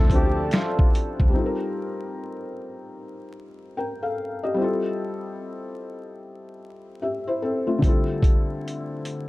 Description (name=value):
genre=lo-fi hip hop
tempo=74 BPM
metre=4/4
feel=swing 61% on 16ths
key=unclear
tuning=A4 = 440 Hz
part: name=breathy flugelhorn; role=melody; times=0.0-0.9 s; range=F4 to G4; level=-34 LUFS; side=equal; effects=analog delay, plate reverb
part: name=felt-muted upright piano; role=accompaniment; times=0.0-9.3 s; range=D3 to G5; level=-27 LUFS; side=left 2 dB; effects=cassette tape, plate reverb
part: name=warbly tape-like pad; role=sustained chords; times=0.0-1.3 s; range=A4 to C6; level=-34 LUFS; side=right 2 dB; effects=chorus, built-in reverb, plate reverb
part: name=upright bass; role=bass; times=0.0-1.3 s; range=D2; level=-26 LUFS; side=equal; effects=none
part: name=boom bap sampler-style drum kit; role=drums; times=0.1-1.3, 7.8-9.3 s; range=finger snaps, hi-hat, kick drum, snare drum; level=-19 LUFS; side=equal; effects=vintage 12-bit sampler grit
part: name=finger snap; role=percussion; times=0.5-0.8 s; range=none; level=-44 LUFS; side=right 4 dB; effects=none
room=light reverb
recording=dark, warm production, vinyl crackle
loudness=-22 LUFS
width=side -19 dB against mid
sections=0.0-1.3 A section; 1.3-9.3 B section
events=none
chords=0.0 Dm7; 1.3 Eb69; 4.6 Fmaj7; 7.8 Dm11